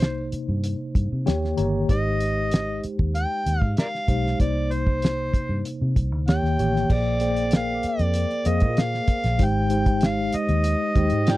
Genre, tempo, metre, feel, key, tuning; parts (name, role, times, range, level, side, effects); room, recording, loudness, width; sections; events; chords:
lush 1970s-style soul; 96 BPM; 4/4; straight; A4 = 440 Hz
overdriven harmonica; melody; 0.0-11.4 s; Bb4 to G5; -27 LUFS; equal
mellow tine electric piano; accompaniment; 0.0-11.4 s; C3 to Bb5; -27 LUFS; left 1 dB; medium stereo tremolo
vintage muted fingered electric bass; bass; 0.0-11.4 s; G1 to C3; -25 LUFS; equal
cloth-damped thuddy drum kit; drums; 0.0-11.4 s; crash cymbal, hi-hat, kick drum, snare drum; -22 LUFS; equal
vibraphone with medium mallets; texture; 7.5-11.4 s; Bb4 to D6; -38 LUFS; right 2 dB
electric guitar through a small old amp; riff; 11.3-11.4 s; F4 to D5; -30 LUFS; right 6 dB
little or no reverb; dry, close 1970s-style studio recording; -20 LUFS; side -17 dB against mid
0.0-6.9 A section; 6.9-11.4 B section
tine electric piano fill 1.0-1.9
0.0 Cm7; 1.3 Eb7; 1.9 Abmaj7; 4.4 Cm7; 6.3 Eb7; 6.9 Bb13; 9.4 Abmaj7